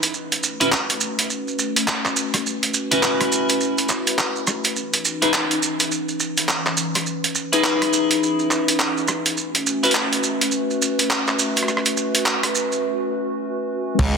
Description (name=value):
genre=glitch hop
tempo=104 BPM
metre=4/4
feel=swing 61% on 16ths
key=unclear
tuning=A4 = 440 Hz
part: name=warbly tape-like pad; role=sustained chords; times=0.0-14.2 s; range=C#3 to D#5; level=-25 LUFS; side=equal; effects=chorus, built-in reverb, vintage 12-bit sampler grit, sidechain pumping
part: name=clean electric guitar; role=stabs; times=0.0-9.9 s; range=C#4 to B4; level=-22 LUFS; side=left 2 dB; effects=analog chorus, sidechain pumping, dub echo
part: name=boom bap sampler-style drum kit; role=drums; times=0.0-14.1 s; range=crash cymbal, handclaps, hi-hat, rim click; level=-21 LUFS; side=right 1 dB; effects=soft clipping on snare
part: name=maracas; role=percussion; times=0.0-12.8 s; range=none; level=-26 LUFS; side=right 5 dB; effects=none
part: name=gritty driven synth bass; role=bass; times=14.0-14.2 s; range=C#2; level=-18 LUFS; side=right 1 dB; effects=tube saturation
part: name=electronic kick drum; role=drums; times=14.0-14.1 s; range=none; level=-22 LUFS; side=right 1 dB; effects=none
room=moderate plate reverb, RT60 1.7 s, digital ambience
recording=dense, heavily limited modern master, high-pass filter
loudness=-18 LUFS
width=side -5 dB against mid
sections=0.0-14.0 A section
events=build-up 0.0-14.0; filter sweep on ambient pad 0.0-14.0; break 12.8-14.0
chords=0.1 A69; 4.8 C#m9; 9.4 A69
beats=| 0.14 0.72 1.30 1.88 | 2.45 3.03 3.61 4.18 | 4.76 5.34 5.91 6.49 | 7.07 7.64 8.22 8.80 | 9.38 9.95 10.53 11.11 | 11.68 12.26 12.84 13.41 | 13.99